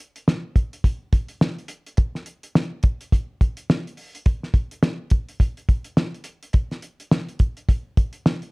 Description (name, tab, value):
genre	indie pop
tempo	105 BPM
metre	4/4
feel	swing 60% on 16ths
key	none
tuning	none
part	cloth-damped thuddy drum kit	drums	0.2-8.5 s	hi-hat, kick drum, snare drum	-18 LUFS	equal	none
room	light reverb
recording	dark, warm production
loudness	-20 LUFS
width	side -32 dB against mid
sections	0.0-6.5 A section; 6.5-8.5 B section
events	none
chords	none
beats	0.26 0.83 1.40 | 1.97 2.54 3.12 3.69 | 4.26 4.83 5.40 5.97 | 6.54 7.12 7.69 8.26